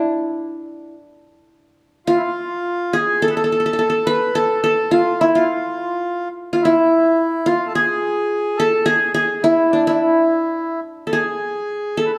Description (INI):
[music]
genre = arabic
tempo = 106 BPM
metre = 4/4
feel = straight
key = unclear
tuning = A4 = 440 Hz
[part]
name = qanun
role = melody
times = 0.0-12.2 s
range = D4 to B4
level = -19 LUFS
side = equal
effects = none
[part]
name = accordion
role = second line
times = 2.1-12.2 s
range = D4 to B4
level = -26 LUFS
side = equal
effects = none
[sound]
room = moderate recital hall reverb, RT60 1.8 s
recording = dark, warm production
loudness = -18 LUFS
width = mono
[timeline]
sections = 0.0-2.1 A section; 2.1-12.2 B section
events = none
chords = none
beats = 0.37 0.94 1.50 | 2.07 2.63 3.20 3.76 | 4.33 4.89 5.46 6.02 | 6.59 7.15 7.72 8.29 | 8.85 9.42 9.98 10.55 | 11.12 11.68